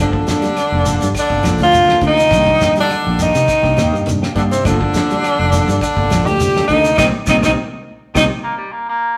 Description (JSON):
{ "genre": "afrobeat", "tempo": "103 BPM", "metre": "4/4", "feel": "swing 53% on 16ths", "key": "G minor", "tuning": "A4 = 441 Hz", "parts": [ { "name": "breathy tenor saxophone", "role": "melody", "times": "0.0-8.2 s", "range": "C4 to G4", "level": "-17 LUFS", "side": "equal", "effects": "none" }, { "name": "edgy tenor saxophone", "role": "second line", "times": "0.0-8.2 s", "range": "C3 to G3", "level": "-28 LUFS", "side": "equal", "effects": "none" }, { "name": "bell-like tine electric piano", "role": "accompaniment", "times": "0.0-8.3 s", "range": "Eb3 to D5", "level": "-27 LUFS", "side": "equal", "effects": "none" }, { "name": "clean electric guitar", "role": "stabs", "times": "0.0-8.3 s", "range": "Eb3 to A4", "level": "-25 LUFS", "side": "equal", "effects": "none" }, { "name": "fingered electric bass", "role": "bass", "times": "0.0-8.3 s", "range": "F1 to C3", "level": "-22 LUFS", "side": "equal", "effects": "none" }, { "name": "semi-hollow electric guitar", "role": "arpeggios", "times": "0.1-8.3 s", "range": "Bb2 to G3", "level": "-29 LUFS", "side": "equal", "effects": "none" }, { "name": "damped 70s drum kit", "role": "drums", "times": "0.1-8.3 s", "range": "hi-hat, kick drum, snare drum", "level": "-26 LUFS", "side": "equal", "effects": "none" }, { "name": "shekere", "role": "percussion", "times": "0.3-8.3 s", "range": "none", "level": "-27 LUFS", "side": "equal", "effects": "none" }, { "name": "claves", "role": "percussion", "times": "0.6-8.3 s", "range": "none", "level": "-36 LUFS", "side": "equal", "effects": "none" }, { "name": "clear baritone saxophone", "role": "second line", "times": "8.4-9.2 s", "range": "G3 to Bb3", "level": "-21 LUFS", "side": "equal", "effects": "none" } ], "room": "wet stone room reverb, RT60 1.2 s", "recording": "rough rehearsal-room recording", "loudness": "-15 LUFS", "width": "mono", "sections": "0.0-9.2 A section", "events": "band accent 7.0-9.2", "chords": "0.0 Gm9; 2.3 Cm9; 4.7 Gm9; 7.0 Cm7" }